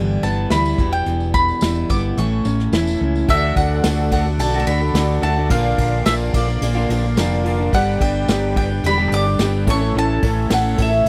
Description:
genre	folk rock and heartland rock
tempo	108 BPM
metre	4/4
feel	straight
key	unclear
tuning	A4 = 443 Hz
part	mandolin	melody	0.0-11.1 s	D5 to D6	-24 LUFS	equal	none
part	picked steel-string acoustic guitar	accompaniment	0.0-11.1 s	E2 to A4	-27 LUFS	equal	none
part	electric guitar through a small old amp	riff	0.0-11.1 s	E2 to A4	-26 LUFS	equal	vibrato effect
part	hollow-body short-scale fingered electric bass	bass	0.0-11.1 s	E1 to D2	-23 LUFS	equal	none
part	tambourine	percussion	0.2-10.6 s	none	-38 LUFS	equal	none
part	soft brush drum kit	drums	0.5-11.1 s	crash cymbal, hi-hat, kick drum, ride cymbal, snare drum	-25 LUFS	equal	none
part	bright baby grand piano	accompaniment	3.3-10.6 s	E4 to Bb5	-34 LUFS	equal	none
part	accordion	sustained chords	3.3-11.1 s	A4 to D6	-33 LUFS	equal	light tremolo tuning
room	little or no reverb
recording	dry, close 1970s-style studio recording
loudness	-18 LUFS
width	mono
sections	0.0-3.3 A section; 3.3-11.1 B section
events	grand piano fill 6.9-7.7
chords	0.0 G6; 0.8 Em; 2.2 A; 3.3 D; 5.5 Bb; 7.7 G; 9.7 A

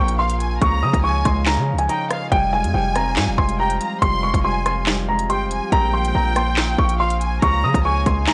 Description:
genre	hip hop, drill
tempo	141 BPM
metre	4/4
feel	half-time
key	F minor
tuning	A4 = 441 Hz
part	dark baby grand piano	melody	0.0-8.3 s	G5 to Eb6	-24 LUFS	equal	none
part	rich studio violin section	second line	0.0-8.2 s	F5 to C6	-29 LUFS	equal	tape echo
part	Celtic harp	accompaniment	0.0-8.3 s	Bb2 to G4	-30 LUFS	equal	none
part	airy breathy pad	sustained chords	0.0-8.3 s	F3 to F5	-36 LUFS	equal	chorus
part	hard-hitting 808-style bass	bass	0.0-8.3 s	F1 to Db3	-24 LUFS	equal	none
part	drill drum kit	drums	0.1-8.3 s	handclaps, hi-hat, kick drum, rim click, snare drum	-24 LUFS	equal	vintage 12-bit sampler grit
room	small room ambience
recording	dry, gritty hardware recording, transformer saturation, cassette tape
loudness	-19 LUFS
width	mono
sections	0.0-8.3 A section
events	none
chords	0.0 Bbsus2; 0.6 Dbadd9; 2.3 Fmadd9; 5.7 Bbsus2; 7.4 Dbadd9

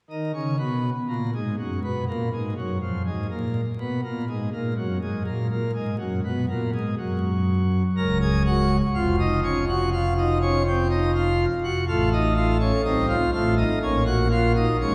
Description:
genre	classical, baroque-style 4-part fugue for pipe organ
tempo	61 BPM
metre	4/4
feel	straight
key	unclear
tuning	A4 = 440 Hz
part	pipe organ, plenum	solo	0.1-14.9 s	Db1 to Bb4	-24 LUFS	equal	none
room	wet church reverb, RT60 2.7 s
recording	recorded in a church or concert hall, vinyl crackle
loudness	-24 LUFS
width	mono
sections	0.1-14.9 A section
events	none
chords	0.1 N.C.; 8.0 Bbm/Db; 9.9 F5; 11.9 F7/A; 13.8 Bbm

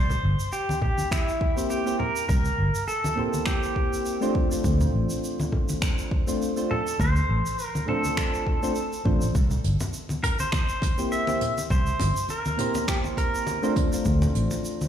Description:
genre	sunset chillout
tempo	102 BPM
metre	4/4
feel	swing 55% on 16ths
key	unclear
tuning	A4 = 440 Hz
part	pedal steel guitar	melody	0.0-13.7 s	E4 to E5	-29 LUFS	equal	ping-pong delay
part	fingered electric bass	bass	0.0-14.5 s	G1 to D2	-23 LUFS	equal	none
part	jazz brush drum kit	drums	0.1-14.9 s	finger snaps, hi-hat, shaker	-35 LUFS	right 2 dB	none
part	congas	percussion	0.1-14.9 s	none	-32 LUFS	left 1 dB	none
part	electronic kick drum	drums	0.8-14.2 s	none	-26 LUFS	equal	overdrive
part	soft electric-piano-like synth keys	accompaniment	1.6-14.9 s	A3 to C5	-28 LUFS	moving between left 2 dB and right 4 dB	chorus, auto-pan, ping-pong delay
room	light reverb, small room ambience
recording	played on a big sound system in a bare room, large studio reverb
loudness	-22 LUFS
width	side -9 dB against mid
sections	0.0-14.9 A section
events	none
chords	0.0 C7; 4.3 Dm7; 9.3 C7; 13.8 Dm7

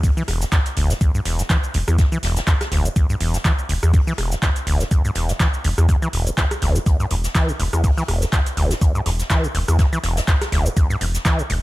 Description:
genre	acid house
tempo	123 BPM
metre	4/4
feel	swing 56% on 16ths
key	E minor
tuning	A4 = 441 Hz
part	acid bass, saw	riff	0.0-11.5 s	E1 to E3	-22 LUFS	equal	overdrive, sidechain pumping, dub echo
part	round analog bass	bass	0.0-11.6 s	E1 to E2	-21 LUFS	equal	sidechain pumping
part	electro analog drum machine	drums	0.0-11.6 s	handclaps, hi-hat, rim click, shaker	-26 LUFS	right 1 dB	overdrive
part	electronic kick drum	drums	0.0-11.4 s	none	-17 LUFS	equal	none
part	jazz brush drum kit	drums	0.0-11.6 s	hi-hat, snare drum	-33 LUFS	left 2 dB	sidechain pumping on hats, high-pass filter on hats, high-pass filter on snare, high-pass filter on room
room	little or no reverb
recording	none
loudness	-17 LUFS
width	side -18 dB against mid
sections	0.0-11.6 A section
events	none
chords	none

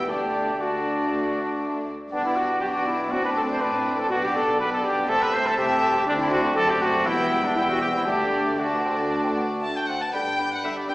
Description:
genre	quick classical-period movement for symphony orchestra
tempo	120 BPM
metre	4/4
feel	straight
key	unclear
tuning	A4 = 440 Hz
part	warm chamber violin section	melody	0.0-10.9 s	D5 to A5	-32 LUFS	left 2 dB	none
part	dark clarinet	second line	0.0-10.9 s	D4 to D5	-32 LUFS	left 1 dB	none
part	silver concert flute	second line	0.0-10.9 s	G5 to B5	-31 LUFS	equal	none
part	warm chamber violin section	second line	0.0-10.9 s	B3 to B4	-34 LUFS	left 1 dB	none
part	warm oboe	second line	0.0-10.9 s	D5 to A5	-31 LUFS	equal	none
part	warm bassoon	accompaniment	0.0-10.9 s	G3 to D4	-31 LUFS	equal	none
part	warm chamber viola section	accompaniment	0.0-10.9 s	D3 to D4	-35 LUFS	equal	none
part	dark French horn section	sustained chords	0.0-10.9 s	G3 to D4	-33 LUFS	equal	none
part	dark chamber cello section	bass	0.0-10.9 s	D2 to D3	-34 LUFS	equal	none
part	dark chamber double bass section	bass	0.0-10.9 s	E1 to D2	-42 LUFS	equal	none
part	clear trumpet	stabs	0.1-10.9 s	D4 to C5	-26 LUFS	right 1 dB	none
room	wet recital hall reverb, RT60 1.6 s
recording	recorded in a church or concert hall, small speaker sound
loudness	-21 LUFS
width	side -20 dB against mid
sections	0.0-10.1 A section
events	none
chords	0.1 D; 2.1 G; 3.1 D5/A; 4.1 G/B; 5.1 Am/C; 6.1 D7; 7.1 Em; 8.1 D; 10.1 G

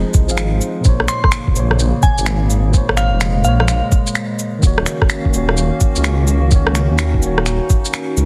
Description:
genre	future garage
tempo	127 BPM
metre	4/4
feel	swing 65% on 16ths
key	unclear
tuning	A4 = 441 Hz
part	tine electric piano	accompaniment	0.0-8.3 s	Bb2 to F5	-25 LUFS	equal	sidechain pumping, tape echo
part	warbly tape-like pad	sustained chords	0.0-8.3 s	Db3 to F5	-27 LUFS	equal	chorus, built-in reverb, sidechain pumping
part	dark detuned saw bass	bass	0.0-8.3 s	Eb1 to Eb2	-19 LUFS	equal	sidechain pumping
part	electronic cabasa, shaker, finger snaps and rim click	drums	0.1-8.3 s	none	-24 LUFS	equal	soft clipping on snare
part	electronic kick drum	drums	0.1-7.8 s	none	-16 LUFS	equal	none
part	glassy synth bell	melody	1.1-3.9 s	F5 to C6	-24 LUFS	equal	chorus, tremolo, tape echo
room	light reverb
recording	dense, heavily limited modern master, vinyl crackle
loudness	-16 LUFS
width	mono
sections	0.0-8.3 A section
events	none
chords	0.0 Fm7; 0.8 Bbmadd9; 4.6 Ebm7

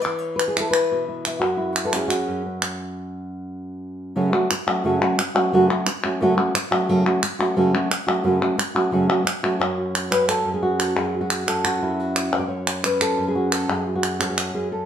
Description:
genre	flamenco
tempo	176 BPM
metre	4/4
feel	straight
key	F# minor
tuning	A4 = 440 Hz
part	flamenco guitar	melody	0.0-14.9 s	F#2 to E5	-21 LUFS	equal	none
part	palmas hand claps	percussion	0.1-14.5 s	none	-24 LUFS	left 1 dB	none
room	wet large studio reverb, RT60 1.0 s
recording	band playing live in one room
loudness	-19 LUFS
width	side -9 dB against mid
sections	0.0-4.2 A section; 4.2-9.6 B section; 9.6-14.9 C section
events	stop 2.8-4.2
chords	0.0 E5; 1.4 F#5; 4.2 F#m

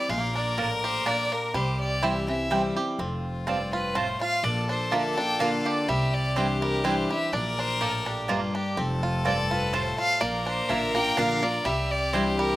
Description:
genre	bluegrass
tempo	125 BPM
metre	3/4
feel	swing 53% on 8ths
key	unclear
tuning	A4 = 441 Hz
part	clear fiddle	melody	0.0-12.6 s	F4 to G5	-29 LUFS	equal	none
part	clear fiddle	second line	0.0-12.6 s	F4 to Bb4	-32 LUFS	left 4 dB	none
part	picked steel-string acoustic guitar	accompaniment	0.0-12.6 s	F2 to F4	-30 LUFS	left 1 dB	slapback echo
part	bluegrass banjo	arpeggios	0.0-12.6 s	E3 to G4	-31 LUFS	right 2 dB	slapback echo
part	upright bass	bass	0.1-12.6 s	F1 to C2	-32 LUFS	equal	none
part	mandolin	stabs	0.6-12.2 s	Bb3 to Bb5	-29 LUFS	right 4 dB	none
room	little or no reverb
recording	recorded outdoors, with no room sound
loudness	-23 LUFS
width	side -16 dB against mid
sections	0.0-3.0 A section; 3.0-12.6 B section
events	none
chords	0.1 Bb; 1.5 C; 3.0 F; 4.4 Bb; 5.9 Cadd9; 7.3 Bb; 8.8 F; 10.2 Bb; 11.7 Cadd9

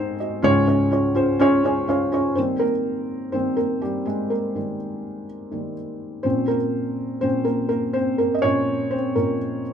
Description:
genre	pop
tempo	124 BPM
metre	4/4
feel	straight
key	unclear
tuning	A4 = 440 Hz
part	felt-muted upright piano	solo	0.0-9.7 s	Db2 to Ab5	-20 LUFS	equal	none
room	wet small room ambience, RT60 0.5 s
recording	band playing live in one room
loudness	-19 LUFS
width	side -8 dB against mid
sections	0.0-2.4 A section; 2.4-9.7 B section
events	felt piano fill 1.4-2.4; felt piano solo 2.4-9.7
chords	0.4 Db; 2.4 Eb; 6.2 Bbm

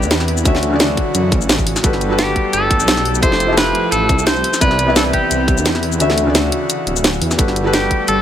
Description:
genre	liquid drum and bass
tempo	173 BPM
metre	4/4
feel	swing 54% on 16ths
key	unclear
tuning	A4 = 436 Hz
part	clean electric guitar	melody	0.0-8.2 s	G4 to C5	-19 LUFS	equal	spring reverb, digital delay
part	felt-muted upright piano	accompaniment	0.0-8.2 s	C3 to E5	-20 LUFS	left 1 dB	tape echo
part	airy breathy pad	sustained chords	0.0-8.2 s	E3 to B4	-25 LUFS	equal	chorus, sidechain pumping
part	dark detuned saw bass	bass	0.0-8.2 s	D1 to F#2	-20 LUFS	equal	none
part	garage drum kit	drums	0.0-8.2 s	hi-hat, shaker, snare drum	-18 LUFS	equal	none
part	electronic kick drum	drums	0.5-8.0 s	none	-17 LUFS	equal	none
room	light reverb, digital ambience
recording	none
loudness	-13 LUFS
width	side -10 dB against mid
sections	0.0-8.2 A section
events	kick drops out 6.0-7.4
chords	0.5 Dmaj9; 1.8 Gmaj9; 3.2 Fmaj9; 4.4 Cmaj9; 6.0 Dmaj9; 7.4 Gmaj9

